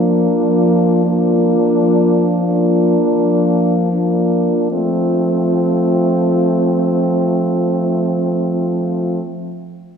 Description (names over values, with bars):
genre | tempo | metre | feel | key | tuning
classical, lyrical piece for horn quartet | 37-48 BPM | 4/4 | rubato | F major | A4 = 440 Hz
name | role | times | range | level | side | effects
mellow French horn | melody | 0.0-9.2 s | F4 | -21 LUFS | left 7 dB | none
warm French horn | second line | 0.0-9.2 s | C4 to D4 | -19 LUFS | right 5 dB | none
mellow French horn | accompaniment | 0.0-9.2 s | A3 to Bb3 | -19 LUFS | left 2 dB | none
mellow French horn | bass | 0.0-9.2 s | F3 | -18 LUFS | equal | none
room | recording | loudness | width
wet concert hall reverb, RT60 2.0 s | heard from further back in the room | -13 LUFS | side -7 dB against mid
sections
0.0-4.7 A section; 4.7-10.0 B section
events
slowing down 0.0-4.7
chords
0.0 Bb/F; 4.7 F